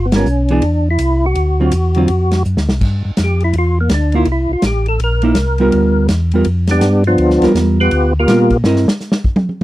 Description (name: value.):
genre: soul jazz organ trio.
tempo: 165 BPM.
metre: 4/4.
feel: swing 63% on 8ths.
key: unclear.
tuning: A4 = 444 Hz.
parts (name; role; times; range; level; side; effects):
percussive tonewheel organ; melody; 0.0-8.6 s; F3 to B4; -16 LUFS; equal; slow rotary speaker, chorus vibrato.
mellow tonewheel organ; bass; 0.0-8.9 s; G1 to A#2; -15 LUFS; equal; slow rotary speaker.
hollow-body jazz guitar; accompaniment; 0.1-8.9 s; D3 to D#5; -14 LUFS; right 2 dB; none.
vintage drum kit; drums; 0.1-9.6 s; crash cymbal, hi-hat, kick drum, ride cymbal, snare drum, toms; -17 LUFS; equal; none.
room: little or no reverb.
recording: dry, close 1970s-style studio recording.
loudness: -12 LUFS.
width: side -16 dB against mid.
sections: 0.0-2.8 A section; 2.8-9.6 B section.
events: band accent 0.1; drum fill 2.5-2.8; tonewheel organ solo 2.8-9.6.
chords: 0.0 G7#9; 0.6 Cadd9; 1.4 D7#9; 2.8 G7(no3); 4.3 C7; 5.7 G7#9; 8.6 C7#9.